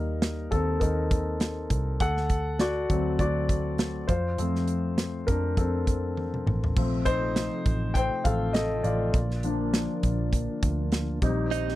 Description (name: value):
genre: piano-driven pop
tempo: 101 BPM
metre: 4/4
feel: swing 56% on 16ths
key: unclear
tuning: A4 = 440 Hz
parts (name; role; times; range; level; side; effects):
- warm concert grand piano; accompaniment; 0.0-11.8 s; F3 to G5; -28 LUFS; left 3 dB; none
- vintage muted picked electric bass; bass; 0.0-11.8 s; A1 to F2; -29 LUFS; right 1 dB; none
- modern studio drum kit; drums; 0.2-11.8 s; crash cymbal, hi-hat, kick drum, snare drum, toms; -27 LUFS; right 1 dB; none
- percussive tonewheel organ; sustained chords; 6.8-11.8 s; C3 to C4; -37 LUFS; right 4 dB; overdrive, chorus vibrato, fast rotary speaker
- direct-recorded clean electric guitar; riff; 11.5-11.8 s; Eb4; -29 LUFS; right 13 dB; spring reverb
room: little or no reverb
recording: dry, close 1970s-style studio recording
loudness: -24 LUFS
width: side -15 dB against mid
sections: 0.0-6.8 A section; 6.8-11.8 B section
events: grand piano solo 0.0-6.8, 6.8-11.8; drum fill 6.2-6.8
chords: 0.0 Eb; 2.0 D7; 4.1 F; 9.1 Bb; 11.2 Cm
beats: 0.22 0.81 1.41 | 2.00 2.60 3.19 3.79 | 4.38 4.98 5.57 6.17 | 6.76 7.36 7.95 8.55 | 9.14 9.74 10.33 10.93 | 11.52